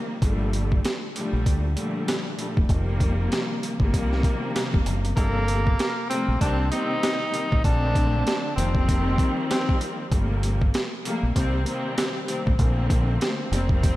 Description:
hip hop, boom-bap hip-hop; 97 BPM; 4/4; swing 60% on 16ths; G minor; A4 = 440 Hz
warm symphonic string section; accompaniment; 0.0-14.0 s; Bb2 to A4; -28 LUFS; left 1 dB; cassette tape, high-pass filter, low-pass filter
deep dub fingered electric bass; bass; 0.2-14.0 s; E1 to D2; -24 LUFS; equal
boom bap sampler-style drum kit; drums; 0.2-14.0 s; hi-hat, kick drum, snare drum; -24 LUFS; equal; overdrive
breathy tenor saxophone; melody; 5.2-9.8 s; Bb3 to Eb4; -27 LUFS; equal; high-pass filter, low-pass filter, tape echo
light reverb, small room ambience; vinyl crackle; -21 LUFS; side -16 dB against mid
0.0-5.2 A section; 5.2-14.0 B section
0.2 Gm9; 2.7 F9sus4; 5.2 Gm11; 6.4 Cm7; 7.6 Bbmaj9; 8.6 F9sus4; 10.1 Gm11; 11.4 Cm7; 12.6 Bbmaj9

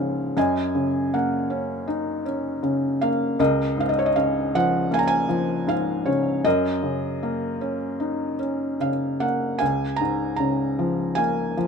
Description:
classical, lyrical solo piano; 78 BPM; 4/4; rubato; A4 = 437 Hz
felt-muted upright piano; solo; 0.0-11.7 s; Db2 to Bb5; -21 LUFS; equal
light reverb; minimal, uncompressed stereo recording; -21 LUFS; side -6 dB against mid
0.0-11.7 A section
0.4 Gb6; 3.4 Db6; 6.5 Gb6; 9.6 Db6

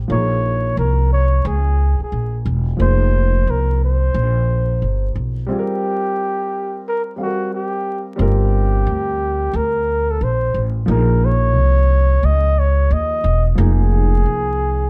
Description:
hip hop; 89 BPM; 4/4; swing 64% on 16ths; C minor; A4 = 440 Hz
dark grand piano; accompaniment; 0.0-14.9 s; F3 to F5; -28 LUFS; equal
upright bass; bass; 0.0-14.9 s; E1 to Eb2; -18 LUFS; equal
breathy flugelhorn; melody; 0.1-14.9 s; F#4 to Eb5; -24 LUFS; equal; slapback echo, plate reverb
light reverb; vinyl crackle; -18 LUFS; mono
0.0-5.5 A section; 5.5-14.9 B section
break 5.5-8.2
0.1 Bbm11; 2.8 Fm11; 5.5 C7sus4; 8.2 Gm11; 10.9 Bbm11; 13.6 Fm7

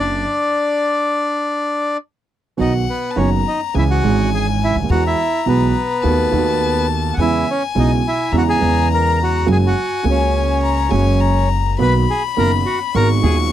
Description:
tango; 104 BPM; 4/4; rubato; B major; A4 = 439 Hz
bandoneon; melody; 0.0-13.4 s; B3 to B5; -19 LUFS; equal
clear violin; second line; 0.0-13.5 s; E5 to C#6; -22 LUFS; left 10 dB; tape echo
warm concert grand piano; accompaniment; 0.0-13.5 s; D#1 to G#4; -19 LUFS; right 6 dB
upright bass; bass; 0.0-13.5 s; F#1 to E2; -19 LUFS; left 1 dB
little or no reverb; dry, close 1970s-style studio recording; -15 LUFS; side -11 dB against mid
0.0-2.6 A section; 2.6-13.5 B section
0.3 N.C.; 2.6 B; 3.7 C#m; 4.9 Eadd9; 6.0 B7/D#; 7.2 E6; 8.3 C#m7/E; 9.5 F#add9; 11.8 Bmaj7; 12.9 G#m7

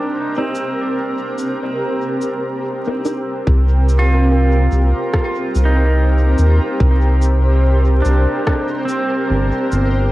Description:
ambient dub; 72 BPM; 4/4; swing 58% on 16ths; C minor; A4 = 444 Hz
granular cloud pad; sustained chords; 0.0-10.1 s; C4 to C5; -20 LUFS; equal; built-in reverb, cassette tape
pedal steel guitar; arpeggios; 0.0-10.1 s; C4 to F4; -23 LUFS; right 1 dB; cassette tape, dub echo
filtered dub chord stab; stabs; 0.4-3.2 s; C4 to Bb4; -29 LUFS; equal
electronic cabasa and rim click; drums; 0.6-9.9 s; -27 LUFS; equal; cassette tape, dub echo
round analog bass; bass; 3.5-10.1 s; G1 to Eb2; -13 LUFS; equal
electronic kick drum; drums; 3.5-8.7 s; -17 LUFS; equal; cassette tape
little or no reverb; home recording on cassette, vinyl crackle; -14 LUFS; side -17 dB against mid
0.0-3.5 A section; 3.5-10.1 B section
0.0 Cm9

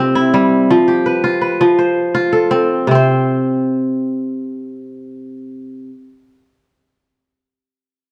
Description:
west african traditional; 110 BPM (dotted quarters); 12/8; straight; A4 = 440 Hz
kora; solo; 0.0-6.0 s; C3 to C5; -16 LUFS; equal
wet recital hall reverb, RT60 1.4 s; dark, warm production; -15 LUFS; mono
0.0-2.9 A section; 2.9-7.2 B section
0.0 C; 0.7 F; 2.9 N.C.

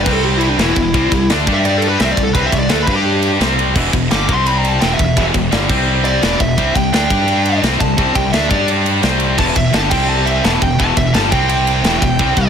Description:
heavy metal; 171 BPM; 4/4; straight; A4 = 440 Hz
high-gain lead guitar; melody; 0.0-12.5 s; D4 to D6; -19 LUFS; equal; distortion
heavy high-gain guitar; riff; 0.0-12.5 s; E2 to G4; -16 LUFS; left 1 dB; distortion
fuzz fingered electric bass; bass; 0.0-12.5 s; E1 to G2; -19 LUFS; equal; overdrive
tight metal drum kit; drums; 0.1-12.4 s; crash cymbal, kick drum, ride cymbal, snare drum; -18 LUFS; equal
little or no reverb; -12 LUFS; side -7 dB against mid
0.0-12.5 A section
lead electric guitar solo 0.0-12.5
0.1 C5; 0.6 E5; 0.9 C5; 1.5 G5; 2.0 C5; 2.9 G5; 3.4 C5; 3.8 Em; 4.3 C5; 4.8 Em; 5.7 C5; 6.2 E5; 6.6 C5; 7.1 G5; 7.6 C5; 8.5 G5; 9.0 C5; 9.4 Em; 9.9 C5; 10.4 Em; 11.3 C5; 11.8 Em

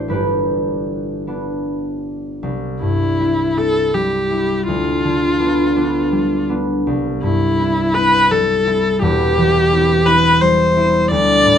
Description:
classical, romantic duo for viola and harp; 50-58 BPM (dotted quarters); 6/8; rubato; C major; A4 = 438 Hz
concert harp; accompaniment; 0.0-11.6 s; E1 to C6; -17 LUFS; equal
rich viola; melody; 2.8-11.6 s; E4 to D5; -15 LUFS; left 1 dB
light reverb; nothing above 10.3 kHz; -14 LUFS; side -8 dB against mid
0.0-2.4 A section; 2.4-11.6 B section
0.1 G; 2.4 C; 4.7 G7/D; 6.9 C; 9.0 C/E

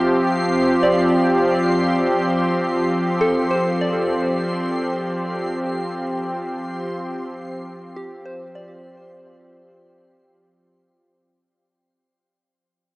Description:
ambient; free time; A4 = 440 Hz
warm analog pad; sustained chords; 0.0-11.3 s; F3 to G4; -19 LUFS; equal; chorus, shimmer reverb
soft synth bell; arpeggios; 0.0-11.3 s; G4 to F5; -26 LUFS; equal; chorus, phaser, tape echo, shimmer reverb
bowed-like drone; drone; 0.3-11.4 s; barely audible
backwards swelling texture; texture; 0.0-11.3 s; C6 to C7; -34 LUFS; equal; built-in reverb, shimmer reverb
wet huge ambient reverb, RT60 7.7 s; small speaker sound; -18 LUFS; side -21 dB against mid
0.0-11.3 A section
fade-out on synth texture 0.0-11.3; fade-out 1.1-11.3
0.0 F6

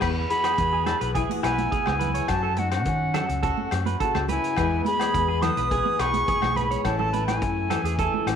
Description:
highlife guitar band; 105 BPM; 4/4; straight; E major; A4 = 438 Hz
silver concert flute; melody; 0.0-8.4 s; F#5 to D#6; -26 LUFS; right 2 dB
warm alto saxophone; second line; 0.0-8.4 s; C#4 to B4; -33 LUFS; left 10 dB
fingerpicked steel-string acoustic guitar; accompaniment; 0.0-8.4 s; E2 to G#4; -32 LUFS; left 10 dB
semi-hollow electric guitar; arpeggios; 0.0-8.3 s; G#4 to C#5; -30 LUFS; right 10 dB; lush chorus, slapback echo
fingered electric bass; bass; 0.0-8.4 s; A1 to D#3; -28 LUFS; equal
vintage drum kit; drums; 0.0-8.4 s; crash cymbal, hi-hat, kick drum, rim click; -32 LUFS; equal
agogo bells; percussion; 0.0-8.4 s; -34 LUFS; left 14 dB
congas; percussion; 0.9-8.3 s; -34 LUFS; right 12 dB
moderate plate reverb, RT60 1.5 s, studio reverb; 1960s-style stereo with parts hard left and right; -22 LUFS; side -8 dB against mid
0.0-8.4 A section
0.0 Eadd9; 2.3 F#m; 4.6 E; 6.8 Amaj7

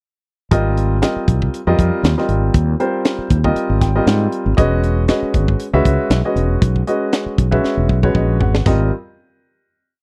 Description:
electric jazz fusion; 118 BPM; 4/4; swing 55% on 16ths; Ab major; A4 = 441 Hz
warm baby grand piano; accompaniment; 0.5-8.9 s; G3 to G5; -21 LUFS; equal
fretless electric bass; bass; 0.5-8.9 s; E1 to Ab2; -19 LUFS; equal
tight funk drum kit; drums; 0.5-8.8 s; hi-hat, kick drum, snare drum, splash cymbal, toms; -20 LUFS; equal
studio ambience; dry, close 1970s-style studio recording; -16 LUFS; mono
0.5-8.7 groove; 8.7-10.0 final chord
grand piano fill 3.6-4.6, 7.9-8.7; drum fill 7.6-8.7
0.5 Abmaj9; 4.6 Emaj9; 8.7 Abmaj9

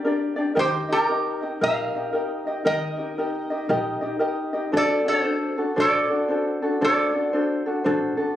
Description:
Hawaiian; 115 BPM; 4/4; swing 64% on 8ths; A4 = 440 Hz
ukulele; accompaniment; 0.0-8.4 s; D4 to Eb5; -24 LUFS; left 1 dB
lap resonator guitar; melody; 0.6-7.8 s; G4 to F5; -23 LUFS; right 1 dB
upright bass; bass; 0.6-8.1 s; A1 to Eb2; -34 LUFS; right 1 dB
moderate recital hall reverb, RT60 1.8 s; recorded on a phone in the room, studio reverb, compression; -21 LUFS; side -12 dB against mid
0.0-8.4 A section
0.0 Gm; 0.6 Eb; 4.7 D7

